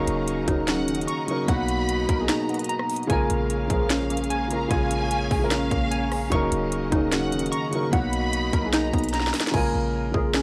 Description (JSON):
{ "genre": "hip hop, trap", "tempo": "149 BPM", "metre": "4/4", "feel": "half-time", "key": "Eb minor", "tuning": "A4 = 440 Hz", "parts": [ { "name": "dark grand piano", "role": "accompaniment", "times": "0.0-10.4 s", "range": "B2 to Bb4", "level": "-29 LUFS", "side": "equal", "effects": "none" }, { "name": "dark symphonic string section", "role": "sustained chords", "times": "0.0-9.5 s", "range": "B2 to Bb5", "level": "-37 LUFS", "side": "equal", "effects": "none" }, { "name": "glassy wavetable pluck", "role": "arpeggios", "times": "0.0-10.4 s", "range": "Eb3 to Db6", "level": "-31 LUFS", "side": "equal", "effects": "chorus, tape echo" }, { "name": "clean 808-style bass", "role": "bass", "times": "0.0-10.4 s", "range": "Eb1 to B1", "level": "-32 LUFS", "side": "equal", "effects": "none" }, { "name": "trap drum kit", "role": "drums", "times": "0.1-10.4 s", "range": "crash cymbal, finger snaps, hi-hat, kick drum, rim click, snare drum", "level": "-29 LUFS", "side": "equal", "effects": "none" }, { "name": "mellow synth brass", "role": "stabs", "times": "0.5-0.8, 3.7-4.0, 6.9-7.2 s", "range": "Db2 to Gb3", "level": "-39 LUFS", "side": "equal", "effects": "none" }, { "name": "warm studio violin section", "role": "second line", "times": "0.7-9.1 s", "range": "F5 to Db6", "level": "-36 LUFS", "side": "equal", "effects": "tape echo" } ], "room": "little or no reverb", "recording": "dry, gritty hardware recording, cassette tape", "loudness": "-24 LUFS", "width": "mono", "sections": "0.0-9.5 A section", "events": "break 2.3-3.1; drum fill 9.1-9.5; hi-hats muted 9.5-10.4", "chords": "0.0 Ebm7; 1.5 Bmaj7; 3.1 Bbm7; 6.3 Ebm7; 7.9 Bmaj7; 9.5 Bbm7" }